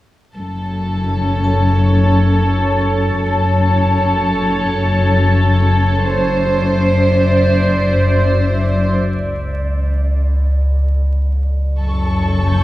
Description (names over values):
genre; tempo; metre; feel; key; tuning
cinematic; 84 BPM; 4/4; straight; F# minor; A4 = 440 Hz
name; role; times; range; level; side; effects
clear studio violin section; melody; 0.4-12.6 s; A4 to C5; -20 LUFS; right 1 dB; none
evolving wavetable pad; sustained chords; 1.0-12.6 s; A4 to A5; -21 LUFS; right 1 dB; chorus, built-in reverb
warm chamber double bass section; bass; 0.4-12.6 s; F#1; -19 LUFS; left 1 dB; none
warm studio cello section; bass; 0.4-12.6 s; F#2; -20 LUFS; equal; none
metallic inharmonic drone; drone; 0.9-12.6 s; F#1 to C#2; -17 LUFS; left 1 dB; chorus, built-in reverb
vibraphone with hard mallets; texture; 1.4-6.1 s; A4 to A5; -29 LUFS; left 1 dB; none
warm studio violin section; texture; 11.8-12.6 s; C#6 to G6; -28 LUFS; equal; none
room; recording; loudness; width
wet scoring stage reverb, RT60 1.7 s; heard from further back in the room, vinyl crackle, small room ambience; -13 LUFS; side -16 dB against mid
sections
0.4-11.8 A section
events
break 8.9-11.8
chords
0.4 F#m; 6.1 Cadd9/F#; 8.9 N.C.; 11.8 F#madd9